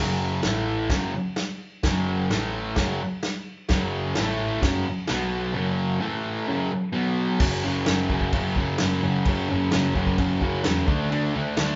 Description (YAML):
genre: garage rock duo or trio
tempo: 129 BPM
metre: 4/4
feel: straight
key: F# minor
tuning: A4 = 440 Hz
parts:
  - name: fuzz guitar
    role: riff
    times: 0.0-11.8 s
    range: F#2 to D4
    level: -27 LUFS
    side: equal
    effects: distortion
  - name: hollow-body short-scale picked electric bass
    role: bass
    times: 0.0-11.8 s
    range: F#1 to E2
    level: -33 LUFS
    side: equal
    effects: none
  - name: vintage drum kit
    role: drums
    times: 0.4-11.7 s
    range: crash cymbal, kick drum, snare drum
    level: -30 LUFS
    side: equal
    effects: none
room: wet large studio reverb, RT60 0.9 s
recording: band playing live in one room, nothing above 7.6 kHz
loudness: -25 LUFS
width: mono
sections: 0.0-7.4 A section; 7.4-11.8 B section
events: none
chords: 0.4 A5; 0.9 F#5; 2.3 A5; 2.8 F#5; 4.2 A5; 4.6 F#5; 5.1 B5; 5.5 F#5; 6.0 A5; 6.5 F#5; 6.9 B5; 7.4 F#5; 10.9 D5